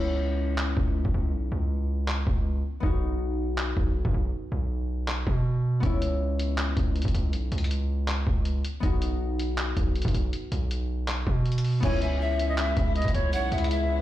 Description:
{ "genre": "hip hop, trap", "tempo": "160 BPM", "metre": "4/4", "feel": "half-time", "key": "C# minor", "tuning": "A4 = 440 Hz", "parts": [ { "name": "concert harp", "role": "accompaniment", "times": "0.0-14.0 s", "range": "B3 to F#4", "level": "-34 LUFS", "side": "left 3 dB", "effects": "none" }, { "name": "distorted 808-style bass", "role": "bass", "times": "0.0-14.0 s", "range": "B1 to B2", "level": "-26 LUFS", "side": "equal", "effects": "distortion" }, { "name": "lo-fi sampler-style drum kit", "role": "drums", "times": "0.6-13.8 s", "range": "crash cymbal, handclaps, hi-hat, kick drum", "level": "-29 LUFS", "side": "equal", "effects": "none" }, { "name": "reedy silver concert flute", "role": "melody", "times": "11.8-14.0 s", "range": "C#5 to E5", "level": "-32 LUFS", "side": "left 2 dB", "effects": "ping-pong delay" }, { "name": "breathy pan flute", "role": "second line", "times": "11.8-14.0 s", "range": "E5 to G#5", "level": "-35 LUFS", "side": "right 4 dB", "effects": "ping-pong delay" }, { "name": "warm chamber string section", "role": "sustained chords", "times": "11.8-14.0 s", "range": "C#3 to E4", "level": "-34 LUFS", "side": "left 3 dB", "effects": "none" }, { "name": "warm brass ensemble", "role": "stabs", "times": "11.8-12.2 s", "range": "C#2 to E3", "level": "-38 LUFS", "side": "left 7 dB", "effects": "none" } ], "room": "small room ambience", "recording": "played on a big sound system in a bare room, large studio reverb", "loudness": "-24 LUFS", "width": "side -14 dB against mid", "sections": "0.0-11.8 A section; 11.8-14.0 B section", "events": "break 0.0-5.8", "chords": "0.0 C#m7; 2.8 B; 5.8 C#m7; 8.8 B; 11.8 C#m7" }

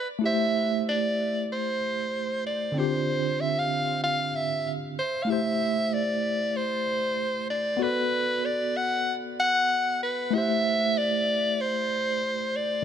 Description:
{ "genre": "chillout", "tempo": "95 BPM", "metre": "4/4", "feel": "swing 57% on 16ths", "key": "A minor", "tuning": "A4 = 440 Hz", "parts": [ { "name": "breathy soprano saxophone", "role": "melody", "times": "0.0-12.8 s", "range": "B4 to F#5", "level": "-26 LUFS", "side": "equal", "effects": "tape echo" }, { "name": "tine electric piano", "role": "accompaniment", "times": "0.2-12.8 s", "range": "D3 to D5", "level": "-29 LUFS", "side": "moving between left 5 dB and right 5 dB", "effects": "medium stereo tremolo, auto-pan, vintage 12-bit sampler grit, digital delay" } ], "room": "light reverb, small room ambience", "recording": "none", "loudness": "-24 LUFS", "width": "side -8 dB against mid", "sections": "0.2-12.8 A section", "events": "break 0.0", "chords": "0.2 Am7; 2.8 Dm7; 5.0 Am7; 7.8 Bm7; 10.3 Am7" }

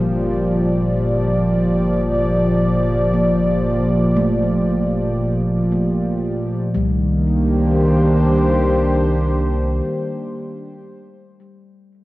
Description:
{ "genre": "ambient", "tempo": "free time", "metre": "none", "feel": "none", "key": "C dorian", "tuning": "A4 = 440 Hz", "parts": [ { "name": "warm analog pad", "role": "sustained chords", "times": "0.0-11.0 s", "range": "Bb2 to D5", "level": "-17 LUFS", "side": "equal", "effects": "chorus, cassette tape" }, { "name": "handpan", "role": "arpeggios", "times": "0.0-10.4 s", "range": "G3 to Bb3", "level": "-27 LUFS", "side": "right 1 dB", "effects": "cassette tape, tape echo" }, { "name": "warm sub bass", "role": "bass", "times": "0.0-9.8 s", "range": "G1 to C2", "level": "-24 LUFS", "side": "equal", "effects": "none" } ], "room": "wet spring reverb, RT60 2.5 s", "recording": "home recording on cassette", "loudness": "-15 LUFS", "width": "side -18 dB against mid", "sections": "0.0-6.7 A section; 6.7-10.9 B section", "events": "none", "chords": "0.0 Gm7; 6.7 Cm9" }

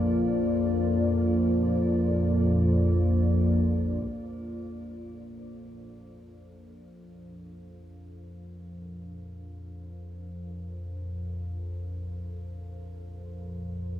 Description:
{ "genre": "dark ambient drone", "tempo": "free time", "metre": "none", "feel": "none", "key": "Bb major", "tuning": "A4 = 440 Hz", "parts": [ { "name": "dark analog pad", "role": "sustained chords", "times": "0.0-4.0 s", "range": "Bb3 to D5", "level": "-27 LUFS", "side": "equal", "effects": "chorus, shimmer reverb" }, { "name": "organ-like drone", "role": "drone", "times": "0.0-14.0 s", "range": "Bb1 to F2", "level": "-29 LUFS", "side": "equal", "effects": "ensemble chorus, built-in reverb" }, { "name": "taiko ensemble", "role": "percussion", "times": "4.0-4.2 s", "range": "none", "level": "-49 LUFS", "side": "equal", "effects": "none" } ], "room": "wet huge ambient reverb, RT60 7.7 s", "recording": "none", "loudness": "-24 LUFS", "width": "side -11 dB against mid", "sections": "0.0-4.0 A section; 4.0-14.0 B section", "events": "fade-in on synth drone 4.0-14.0", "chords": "0.0 Bb; 4.0 Bb5" }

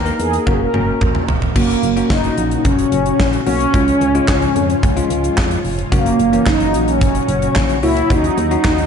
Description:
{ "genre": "synth-pop", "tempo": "110 BPM", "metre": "4/4", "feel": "straight", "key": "unclear", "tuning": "A4 = 440 Hz", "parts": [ { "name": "mellow synth brass", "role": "melody", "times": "0.0-8.9 s", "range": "A#3 to A#4", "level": "-17 LUFS", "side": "equal", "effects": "chorus, tape echo" }, { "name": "solid FM bass", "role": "bass", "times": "0.0-8.8 s", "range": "E1 to E#2", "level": "-21 LUFS", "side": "equal", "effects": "none" }, { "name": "bell-like tine electric piano", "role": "accompaniment", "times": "0.1-8.9 s", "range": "E3 to A#4", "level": "-22 LUFS", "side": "left 4 dB", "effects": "fast stereo tremolo" }, { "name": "gated 80s drum kit", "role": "drums", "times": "0.1-8.9 s", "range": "crash cymbal, handclaps, hi-hat, kick drum, snare drum, toms", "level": "-18 LUFS", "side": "equal", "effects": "none" }, { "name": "soft string machine", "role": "sustained chords", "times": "1.6-8.9 s", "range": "G#2 to F#4", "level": "-23 LUFS", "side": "equal", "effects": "ensemble chorus" } ], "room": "moderate lush hall reverb, RT60 2.0 s", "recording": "big arena sound, nothing above 10.7 kHz", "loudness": "-13 LUFS", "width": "side -7 dB against mid", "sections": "0.0-1.6 A section; 1.6-8.9 B section", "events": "drum fill 0.5-1.6", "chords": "0.5 F#; 3.7 C#; 5.9 F#; 8.1 D#m7" }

